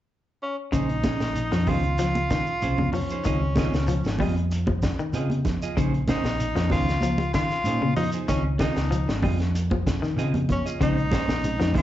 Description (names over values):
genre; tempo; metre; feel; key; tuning
afrobeat; 95 BPM; 4/4; straight; Bb minor; A4 = 440 Hz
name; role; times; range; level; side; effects
bright tenor saxophone; melody; 0.4-11.8 s; Db4 to F4; -28 LUFS; equal; slapback echo
electric guitar at the edge of break-up; arpeggios; 0.7-11.8 s; Db3 to G3; -28 LUFS; left 4 dB; slapback echo
clean electric guitar; stabs; 0.7-11.8 s; C4 to Eb5; -32 LUFS; right 6 dB; slapback echo
hollow-body short-scale fingered electric bass; bass; 0.7-11.8 s; Ab1 to Db3; -26 LUFS; equal; none
crunchy breakbeat drum kit; drums; 0.7-11.8 s; hi-hat, kick drum, snare drum; -29 LUFS; equal; none
shekere; percussion; 0.7-11.8 s; none; -35 LUFS; right 1 dB; slapback echo
congas; percussion; 1.0-11.8 s; none; -30 LUFS; right 2 dB; slapback echo
reed electric piano; accompaniment; 10.8-11.7 s; Ab3 to Eb4; -30 LUFS; left 2 dB; tremolo, slapback echo
room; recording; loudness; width
light reverb; live gig heard through the venue's PA, club reverb, nothing above 7.8 kHz; -22 LUFS; side -13 dB against mid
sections
0.7-11.8 A section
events
none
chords
0.0 N.C.; 0.7 Bbm11; 3.2 Dbmaj9; 5.8 Bbm11; 8.3 Dbmaj9; 10.8 Bbm11